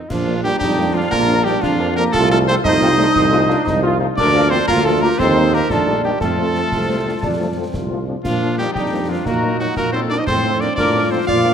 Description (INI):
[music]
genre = military-style march for wind band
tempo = 118 BPM (dotted quarters)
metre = 6/8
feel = straight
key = Bb major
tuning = A4 = 440 Hz
[part]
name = clear cornet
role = melody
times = 0.0-11.5 s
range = Eb4 to F5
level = -22 LUFS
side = right 1 dB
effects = none
[part]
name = mellow wooden piccolo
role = second line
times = 0.0-11.5 s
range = Eb5 to F6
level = -24 LUFS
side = left 3 dB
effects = none
[part]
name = mellow tuba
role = bass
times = 0.0-11.5 s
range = Bb1 to Bb2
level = -21 LUFS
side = right 2 dB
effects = none
[part]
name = warm euphonium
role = second line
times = 0.1-11.5 s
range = F3 to F4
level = -22 LUFS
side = right 3 dB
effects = none
[part]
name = warm woodwind section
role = second line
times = 0.1-11.5 s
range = D4 to D5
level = -25 LUFS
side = left 2 dB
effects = none
[part]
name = dark trombone section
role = sustained chords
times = 0.1-11.5 s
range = A3 to F4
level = -23 LUFS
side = right 2 dB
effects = none
[part]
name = concert snare drum, clash cymbals and concert bass drum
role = drums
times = 0.1-11.4 s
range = none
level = -27 LUFS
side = left 2 dB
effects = none
[part]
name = mellow French horn section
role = accompaniment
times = 0.3-11.5 s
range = F3 to F4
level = -26 LUFS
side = left 5 dB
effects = none
[sound]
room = moderate concert hall reverb, RT60 1.8 s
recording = none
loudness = -14 LUFS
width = side -8 dB against mid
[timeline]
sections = 0.1-11.5 A section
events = none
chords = 0.1 Bb; 2.1 F7/C; 4.2 Bb/D; 5.2 Eb; 6.2 F; 8.2 Bb; 9.3 Ebm/Bb; 10.3 F7/A